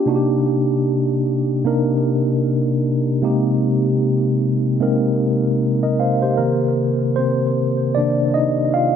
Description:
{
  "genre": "R&B",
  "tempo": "76 BPM",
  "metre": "4/4",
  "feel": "swing 58% on 16ths",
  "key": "C minor",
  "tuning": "A4 = 440 Hz",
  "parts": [
    { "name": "mellow tine electric piano", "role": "solo", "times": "0.0-9.0 s", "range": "C3 to F5", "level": "-16 LUFS", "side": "equal", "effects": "fast stereo tremolo, tape echo" }
  ],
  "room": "moderate echo chamber reverb, RT60 1.9 s",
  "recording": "echo-heavy mix",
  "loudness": "-16 LUFS",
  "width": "side -8 dB against mid",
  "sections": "0.0-6.4 A section; 6.4-9.0 B section",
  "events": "tine electric piano solo 6.4-9.0",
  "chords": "0.1 Cm9; 3.2 Abmaj13/C; 6.4 Cm7"
}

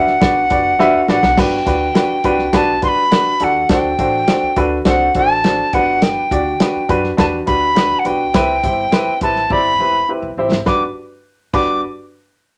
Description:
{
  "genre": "uptempo 1960s-style soul",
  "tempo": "103 BPM",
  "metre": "4/4",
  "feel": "straight",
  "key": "G major",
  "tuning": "A4 = 440 Hz",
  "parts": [
    { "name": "mellow reedy alto recorder", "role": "melody", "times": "0.0-11.8 s", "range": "F#5 to D6", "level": "-18 LUFS", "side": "equal", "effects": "none" },
    { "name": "warm baby grand piano", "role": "accompaniment", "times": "0.0-11.8 s", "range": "C4 to E5", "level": "-20 LUFS", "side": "equal", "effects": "none" },
    { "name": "upright bass", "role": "bass", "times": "0.0-11.8 s", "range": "E1 to F#2", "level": "-30 LUFS", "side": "equal", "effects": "none" },
    { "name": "warm soul drum kit", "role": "drums", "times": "0.1-11.7 s", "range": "crash cymbal, hi-hat, kick drum, snare drum", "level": "-20 LUFS", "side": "equal", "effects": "none" }
  ],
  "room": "wet studio reverb, RT60 0.6 s",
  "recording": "none",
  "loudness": "-15 LUFS",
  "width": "mono",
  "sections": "0.0-1.4 A section; 1.4-10.7 B section; 10.7-12.6 C section",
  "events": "drum fill 0.8-1.4, 9.5-10.7",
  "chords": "0.0 Gmaj7; 3.7 D7; 5.7 Gmaj7; 8.3 Cmaj7; 10.7 Gmaj7"
}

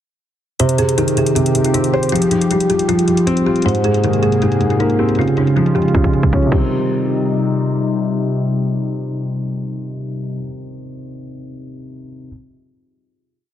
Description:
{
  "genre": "hip hop, trap",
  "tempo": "157 BPM",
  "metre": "4/4",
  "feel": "half-time",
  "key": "C phrygian",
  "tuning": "A4 = 439 Hz",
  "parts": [
    { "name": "kalimba", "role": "melody", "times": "0.6-7.8 s", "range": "Eb4 to C5", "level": "-20 LUFS", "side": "right 2 dB", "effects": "low-pass filter, digital delay" },
    { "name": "dark concert grand piano", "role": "accompaniment", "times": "0.6-12.3 s", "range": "Ab2 to C5", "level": "-18 LUFS", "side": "left 1 dB", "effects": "low-pass filter" },
    { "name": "warm analog pad", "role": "sustained chords", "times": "0.6-10.4 s", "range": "C3 to Ab4", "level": "-21 LUFS", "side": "left 1 dB", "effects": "chorus" },
    { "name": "trap drum kit", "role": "drums", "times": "0.6-6.6 s", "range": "crash cymbal, hi-hat, kick drum", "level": "-20 LUFS", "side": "right 1 dB", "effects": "none" }
  ],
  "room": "light reverb",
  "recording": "dense, heavily limited modern master, low-pass filter",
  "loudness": "-14 LUFS",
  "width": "side -10 dB against mid",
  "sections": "0.6-6.7 breakdown; 6.7-9.8 final hit",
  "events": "filter sweep 0.6-6.7; drum fill 5.9-6.7",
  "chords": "0.6 Cm; 2.1 Fsus2; 3.7 Abadd9; 5.2 Db; 6.5 Cm"
}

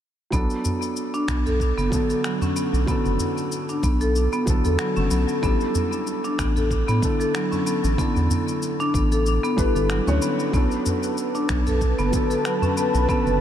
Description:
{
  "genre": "organic downtempo",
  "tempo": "94 BPM",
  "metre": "4/4",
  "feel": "swing 54% on 16ths",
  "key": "B minor",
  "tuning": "A4 = 440 Hz",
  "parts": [
    { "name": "felt-muted upright piano", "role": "accompaniment", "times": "0.3-13.4 s", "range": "D3 to C#5", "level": "-28 LUFS", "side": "equal", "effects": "sidechain pumping, ping-pong delay" },
    { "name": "marimba with medium hard mallets", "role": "arpeggios", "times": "0.3-13.4 s", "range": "F#3 to A4", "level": "-24 LUFS", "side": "equal", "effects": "ping-pong delay" },
    { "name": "round analog bass", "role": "bass", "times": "0.3-13.4 s", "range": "F#1 to A2", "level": "-22 LUFS", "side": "equal", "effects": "sidechain pumping" },
    { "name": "electronic kick drum", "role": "drums", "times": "0.3-13.2 s", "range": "none", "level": "-26 LUFS", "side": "equal", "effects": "none" },
    { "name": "electronic shaker and finger snaps", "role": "drums", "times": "0.3-13.4 s", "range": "none", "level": "-33 LUFS", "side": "left 1 dB", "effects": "none" },
    { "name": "udu", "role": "percussion", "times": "0.7-12.7 s", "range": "none", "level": "-28 LUFS", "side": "equal", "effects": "none" },
    { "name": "warm analog pad", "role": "sustained chords", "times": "10.5-13.4 s", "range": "B4 to A5", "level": "-27 LUFS", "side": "left 1 dB", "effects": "chorus, sidechain pumping" }
  ],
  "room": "moderate huge ambient reverb, RT60 9.1 s",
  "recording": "dreamy mix soaked in reverb",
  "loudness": "-20 LUFS",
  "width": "side -10 dB against mid",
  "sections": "0.3-13.4 A section",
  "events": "none",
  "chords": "0.3 Bm7; 5.4 A7sus4; 10.5 Bm7"
}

